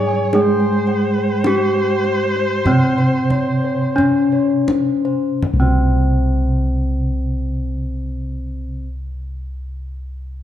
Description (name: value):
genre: Javanese gamelan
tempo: 40-57 BPM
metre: 4/4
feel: straight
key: unclear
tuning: A4 = 439 Hz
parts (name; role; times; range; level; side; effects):
- gamelan-type bronze metallophone; melody; 0.0-8.9 s; C4 to Ab4-20c; -19 LUFS; left 2 dB; none
- warm erhu; second line; 0.0-4.5 s; C5 to Db5+26c; -24 LUFS; left 1 dB; none
- gamelan-type bronze metallophone; accompaniment; 0.0-8.9 s; C3 to Ab3-20c; -23 LUFS; right 2 dB; none
- gamelan-type bronze metallophone; arpeggios; 0.0-8.9 s; C5 to Ab5-20c; -29 LUFS; right 4 dB; none
- gamelan-type bossed gongs; bass; 0.0-8.8 s; C2 to Ab4-20c; -21 LUFS; equal; none
- gamelan-type bossed gongs; arpeggios; 0.1-8.9 s; C5 to Ab5-20c; -31 LUFS; left 2 dB; none
- kendang; percussion; 0.3-6.1 s; none; -25 LUFS; left 1 dB; none
room: moderate recital hall reverb, RT60 1.5 s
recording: dark, warm production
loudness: -15 LUFS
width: side -11 dB against mid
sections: 0.0-5.4 A section; 5.4-10.4 B section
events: slowing down 0.0-5.4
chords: none